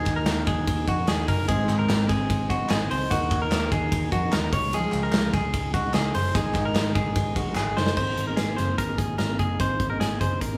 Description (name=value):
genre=jangly indie pop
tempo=148 BPM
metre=4/4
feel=straight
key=Ab mixolydian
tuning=A4 = 440 Hz
part: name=picked steel-string acoustic guitar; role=accompaniment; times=0.0-10.6 s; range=Ab2 to C5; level=-31 LUFS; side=equal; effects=none
part: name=direct-recorded clean electric guitar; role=arpeggios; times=0.0-10.6 s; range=Gb4 to Db5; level=-31 LUFS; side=equal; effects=none
part: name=vintage muted picked electric bass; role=bass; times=0.0-10.6 s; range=Gb1 to F2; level=-31 LUFS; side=equal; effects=none
part: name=big rock drum kit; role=drums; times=0.1-10.5 s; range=crash cymbal, hi-hat, kick drum, ride cymbal, snare drum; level=-30 LUFS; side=equal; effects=none
part: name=group handclap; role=percussion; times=0.1-7.6 s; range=none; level=-39 LUFS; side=equal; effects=none
room=moderate stone room reverb, RT60 1.4 s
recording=band playing live in one room, studio ambience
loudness=-24 LUFS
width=mono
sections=0.0-8.0 A section; 8.0-10.6 B section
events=drum fill 7.6-8.0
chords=0.0 Ebm; 1.5 Ab; 3.1 Ebm; 4.5 Dbadd9; 6.3 Abadd9